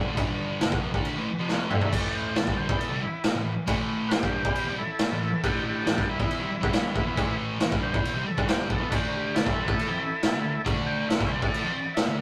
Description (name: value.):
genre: garage rock duo or trio.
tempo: 138 BPM.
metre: 4/4.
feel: straight.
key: A minor.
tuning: A4 = 440 Hz.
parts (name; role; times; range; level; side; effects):
thick fuzz guitar; riff; 0.0-12.2 s; F2 to A4; -32 LUFS; equal; distortion.
raw garage drum kit; drums; 0.2-12.1 s; crash cymbal, kick drum, snare drum, toms; -29 LUFS; equal; none.
overdriven combo organ; melody; 1.7-12.2 s; D4 to G5; -34 LUFS; equal; none.
room: moderate booth ambience, RT60 0.2 s.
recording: rough rehearsal-room recording, tube saturation.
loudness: -27 LUFS.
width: mono.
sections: 0.0-12.2 A section.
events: transistor combo organ solo 0.0-12.2; drum fill 1.5-1.9.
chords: 0.0 G5; 1.9 Am; 8.9 D5.